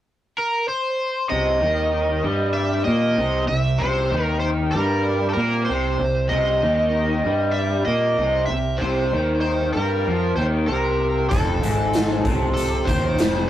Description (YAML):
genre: blues rock power trio and southern rock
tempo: 96 BPM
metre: 4/4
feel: straight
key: unclear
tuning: A4 = 440 Hz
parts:
  - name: overdriven slide guitar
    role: melody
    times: 0.4-13.5 s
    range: A4 to E5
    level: -23 LUFS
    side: right 1 dB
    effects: none
  - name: overdriven tonewheel organ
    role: sustained chords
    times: 1.3-13.5 s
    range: F3 to E5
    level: -34 LUFS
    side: equal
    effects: none
  - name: raw garage guitar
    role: riff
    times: 1.3-13.5 s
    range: F2 to Bb3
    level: -24 LUFS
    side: left 1 dB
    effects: overdrive
  - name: fuzz fingered electric bass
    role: bass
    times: 1.3-13.5 s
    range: F1 to Bb2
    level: -24 LUFS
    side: equal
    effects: overdrive
  - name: raw garage drum kit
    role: drums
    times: 11.3-13.3 s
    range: hi-hat, kick drum, snare drum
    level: -22 LUFS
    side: equal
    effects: none
room: wet booth ambience, RT60 0.2 s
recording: rough rehearsal-room recording, tube saturation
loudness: -18 LUFS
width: side -12 dB against mid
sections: 0.0-1.3 A section; 1.3-13.5 B section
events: none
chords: 0.0 N.C.; 1.3 C7; 11.3 F7